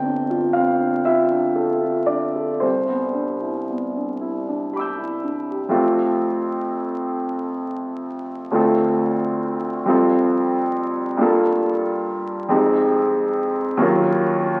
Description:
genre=classical, impressionist solo piano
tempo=37-47 BPM (dotted quarters)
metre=6/8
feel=rubato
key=C major, F major from 5.8 s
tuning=A4 = 440 Hz
part: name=clear concert grand piano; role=solo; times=0.0-14.6 s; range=G1 to G6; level=-21 LUFS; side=equal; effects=none
room=wet scoring stage reverb, RT60 2.0 s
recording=very old 78 rpm record, vinyl crackle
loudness=-21 LUFS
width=mono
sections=0.0-5.8 A section; 5.8-14.6 B section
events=none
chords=0.0 G9sus4; 2.6 Cmaj9; 5.8 Fadd9; 8.6 Dm7; 9.9 Fadd9; 11.2 Gm9; 12.5 Fm9; 13.8 Ebm9

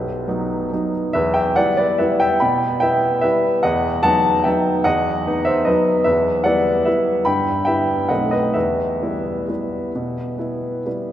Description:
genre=classical, piano waltz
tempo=124-158 BPM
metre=3/4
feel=rubato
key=E minor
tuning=A4 = 439 Hz
part: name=clear baby grand piano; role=solo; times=0.0-11.1 s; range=B1 to B5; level=-16 LUFS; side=equal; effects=none
room=wet cathedral reverb, RT60 5.3 s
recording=recorded in a church or concert hall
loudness=-16 LUFS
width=side -11 dB against mid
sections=0.0-11.1 A section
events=none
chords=0.0 B; 1.2 Em; 3.7 B/E; 6.1 Em; 7.3 Em/G; 8.1 B7b9; 8.6 Em

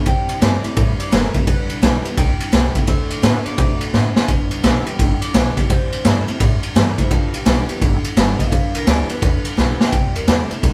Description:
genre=rockabilly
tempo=170 BPM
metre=4/4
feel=swing 64% on 8ths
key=G major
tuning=A4 = 437 Hz
part: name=picked steel-string acoustic guitar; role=accompaniment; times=0.0-10.7 s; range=G2 to G4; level=-31 LUFS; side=equal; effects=none
part: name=electric guitar through a small old amp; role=riff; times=0.0-10.7 s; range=G2 to B3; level=-32 LUFS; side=equal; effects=none
part: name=electric guitar through a small old amp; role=melody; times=0.1-10.7 s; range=E4 to G5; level=-31 LUFS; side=equal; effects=phaser
part: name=upright bass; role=bass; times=0.1-10.7 s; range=F#1 to C3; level=-24 LUFS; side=equal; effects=none
part: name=raw garage drum kit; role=drums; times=0.1-10.7 s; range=kick drum, ride cymbal, snare drum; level=-19 LUFS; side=equal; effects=none
room=little or no reverb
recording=band playing live in one room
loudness=-17 LUFS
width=mono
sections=0.0-4.3 A section; 4.3-10.7 B section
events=drum fill 3.9-4.3, 9.6-9.9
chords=0.1 C; 1.5 G; 2.2 C; 2.9 D; 4.3 G; 5.7 C; 7.1 G; 9.9 C

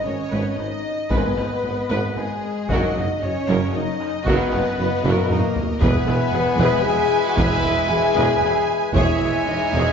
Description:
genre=cinematic, epic orchestral film score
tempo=114 BPM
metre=3/4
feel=straight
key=G# minor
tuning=A4 = 439 Hz
part: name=mellow small flute group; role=second line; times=0.0-9.9 s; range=G#4 to G#5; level=-28 LUFS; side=right 2 dB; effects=none
part: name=warm studio violin section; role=second line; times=0.0-9.9 s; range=D#5 to G#5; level=-29 LUFS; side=left 2 dB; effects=none
part: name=mellow French horn section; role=sustained chords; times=0.0-9.9 s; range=G#3 to G#4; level=-24 LUFS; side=left 4 dB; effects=none
part: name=warm symphonic violin section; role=melody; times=0.1-9.9 s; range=G#4 to G#5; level=-31 LUFS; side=left 4 dB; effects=none
part: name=warm symphonic viola section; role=accompaniment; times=0.1-9.9 s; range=D#4 to C#5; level=-28 LUFS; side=equal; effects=none
part: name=clear tuba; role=bass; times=0.1-9.9 s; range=E1 to G#1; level=-29 LUFS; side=right 2 dB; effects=none
part: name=rich symphonic cello section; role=bass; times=0.1-9.8 s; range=E2 to G#2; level=-27 LUFS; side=right 2 dB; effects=none
part: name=rich symphonic double bass section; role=bass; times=0.1-9.8 s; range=E1 to G#1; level=-27 LUFS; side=right 2 dB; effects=none
part: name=bright trombone section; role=sustained chords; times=1.1-9.9 s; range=D#3 to G#3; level=-30 LUFS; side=right 2 dB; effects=none
part: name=mellow trumpet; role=stabs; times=1.1-9.9 s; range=F#4 to C#5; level=-29 LUFS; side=right 4 dB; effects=none
part: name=taiko ensemble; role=drums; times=1.1-9.4 s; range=none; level=-26 LUFS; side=equal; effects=none
room=wet recital hall reverb, RT60 1.4 s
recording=heard from further back in the room, nothing above 7.6 kHz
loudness=-18 LUFS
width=side -6 dB against mid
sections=0.0-9.9 A section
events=drum fill 5.0-5.8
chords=0.0 G#m; 2.7 D#m/F#; 5.8 E; 9.0 C#m/E

